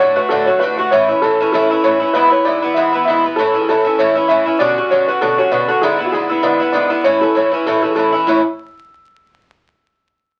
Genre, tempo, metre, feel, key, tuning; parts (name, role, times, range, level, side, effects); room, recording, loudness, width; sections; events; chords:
celtic folk; 196 BPM; 4/4; swing 54% on 8ths; A major; A4 = 440 Hz
felt-muted upright piano; melody; 0.0-8.4 s; E4 to E5; -18 LUFS; equal
Irish bouzouki; accompaniment; 0.0-8.4 s; G#2 to F#4; -17 LUFS; equal
wet small room ambience, RT60 0.5 s; very old 78 rpm record, vinyl crackle; -15 LUFS; mono
0.0-8.3 A section; 8.3-9.5 B section
0.0 D; 0.9 A; 2.1 E; 3.4 A; 4.6 Bmadd9; 5.8 E7; 7.1 A